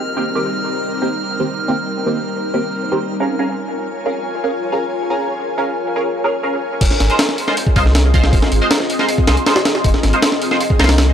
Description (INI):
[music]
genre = drum and bass, jungle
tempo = 158 BPM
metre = 4/4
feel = straight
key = F minor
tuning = A4 = 440 Hz
[part]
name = ethereal airy pad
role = sustained chords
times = 0.0-11.1 s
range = G3 to Ab5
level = -21 LUFS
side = left 2 dB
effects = ensemble chorus, built-in reverb
[part]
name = drifting glass-harmonics texture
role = texture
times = 0.0-6.8 s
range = F6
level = -28 LUFS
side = right 2 dB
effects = chorus, built-in reverb
[part]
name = band-passed chord stab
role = stabs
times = 0.2-10.9 s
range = Eb3 to F5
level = -20 LUFS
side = right 2 dB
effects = phaser, ensemble chorus, dub echo
[part]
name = soft dub sub bass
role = bass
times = 6.8-11.1 s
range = F1 to C2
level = -15 LUFS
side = equal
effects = tube saturation
[part]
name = breakbeat sampler-style drum kit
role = drums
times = 6.8-11.1 s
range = crash cymbal, hi-hat, kick drum, snare drum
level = -15 LUFS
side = equal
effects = none
[sound]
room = light reverb, digital ambience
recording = dry, gritty hardware recording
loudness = -14 LUFS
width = side -9 dB against mid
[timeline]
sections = 0.0-6.8 A section; 6.8-11.1 B section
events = drop 6.8-11.1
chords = 0.0 Cm7; 3.0 Bbm7; 6.8 Fm7